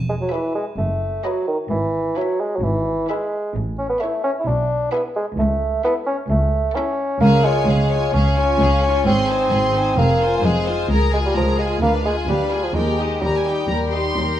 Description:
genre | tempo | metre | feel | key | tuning
cinematic, playful, whimsical film cue | 130 BPM | 4/4 | straight | E major | A4 = 439 Hz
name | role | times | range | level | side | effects
rich studio cello section | bass | 0.0-14.4 s | C#2 to B2 | -23 LUFS | equal | none
warm chamber double bass section | bass | 0.0-14.4 s | E1 to Eb2 | -23 LUFS | right 1 dB | none
warm bassoon | accompaniment | 0.1-14.4 s | D#3 to E4 | -20 LUFS | equal | none
rich chamber violin section | melody | 0.3-14.4 s | D#5 to C6 | -29 LUFS | left 2 dB | none
clear chamber violin section | second line | 0.3-14.4 s | G4 to C#5 | -27 LUFS | left 4 dB | none
rich chamber viola section | accompaniment | 0.3-14.4 s | C4 to G#4 | -28 LUFS | left 4 dB | none
room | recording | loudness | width
wet stone room reverb, RT60 1.1 s | dark, warm production | -17 LUFS | side -11 dB against mid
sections
0.0-14.4 A section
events
none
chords
0.0 E; 0.8 B7/F#; 1.7 E/G#; 3.5 A; 4.5 E7/B; 5.4 A/C#; 7.2 Db; 9.1 Ab; 10.0 Fm; 10.9 Bbm7/Db; 11.8 Ddim7; 12.8 Eb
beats
0.32 0.79 1.25 | 1.71 2.16 2.62 3.08 | 3.54 4.00 4.46 4.92 | 5.38 5.84 6.30 6.76 | 7.22 7.68 8.14 8.60 | 9.06 9.52 9.98 10.44 | 10.90 11.36 11.82 12.29 | 12.75 13.22 13.69 14.16

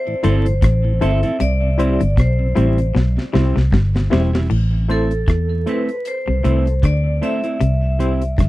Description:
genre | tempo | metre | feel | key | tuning
roots reggae | 77 BPM | 4/4 | swing 56% on 16ths | A minor | A4 = 440 Hz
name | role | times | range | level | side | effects
vibraphone with hard mallets | melody | 0.0-8.5 s | A4 to E5 | -24 LUFS | equal | tape echo
mellow tonewheel organ | accompaniment | 0.1-4.4 s | A2 to E4 | -26 LUFS | left 2 dB | slow rotary speaker
mellow electric guitar | accompaniment | 0.2-8.2 s | G3 to A4 | -24 LUFS | right 4 dB | tape echo
semi-hollow electric guitar | riff | 0.2-8.5 s | E2 to E3 | -23 LUFS | left 3 dB | none
reed electric piano | stabs | 0.2-8.2 s | E4 to C5 | -24 LUFS | left 5 dB | fast tremolo
vintage muted fingered electric bass | bass | 0.2-8.5 s | E1 to E2 | -17 LUFS | equal | none
deep reggae drum kit | drums | 0.2-8.5 s | crash cymbal, hi-hat, kick drum, rim click, snare drum | -19 LUFS | equal | none
room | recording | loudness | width
little or no reverb | dry, close 1970s-style studio recording, vinyl crackle | -15 LUFS | side -17 dB against mid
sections
0.0-4.5 A section; 4.5-8.5 B section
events
drum fill 3.0-4.5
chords
0.0 Am; 1.4 C; 4.5 Am; 7.6 C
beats
0.63 | 1.40 2.18 2.95 3.73 | 4.50 5.28 6.05 6.83 | 7.61 8.38

